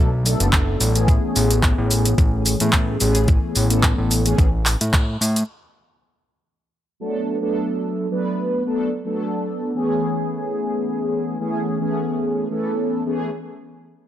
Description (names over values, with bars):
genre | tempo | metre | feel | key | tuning
nu-disco, nu disco | 109 BPM | 4/4 | swing 53% on 16ths | B dorian | A4 = 440 Hz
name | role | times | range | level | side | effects
mellow synth brass | accompaniment | 0.0-13.3 s | E3 to B4 | -22 LUFS | equal | chorus, sidechain pumping, analog delay
fat analog bass | bass | 0.0-5.4 s | F#1 to A2 | -20 LUFS | equal | none
pop drum kit | drums | 0.3-5.5 s | handclaps, hi-hat, shaker | -22 LUFS | equal | overdrive, low-pass filter on hats, low-pass filter on snare, low-pass filter on perc, low-pass filter on room
electronic kick drum | drums | 0.5-5.1 s | none | -17 LUFS | equal | none
room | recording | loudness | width
moderate plate reverb, RT60 1.7 s, digital ambience | none | -18 LUFS | side -11 dB against mid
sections
0.0-5.5 A section; 5.5-14.1 B section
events
band accent 4.9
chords
0.0 Bm7; 1.1 Amaj9; 5.5 Bm7; 9.9 Amaj9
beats
0.53 | 1.08 1.63 2.18 2.73 | 3.28 3.83 4.38 4.93 | 5.48 6.03 6.58 7.13 | 7.69 8.24 8.79 9.34 | 9.89 10.44 10.99 11.54 | 12.09 12.64 13.19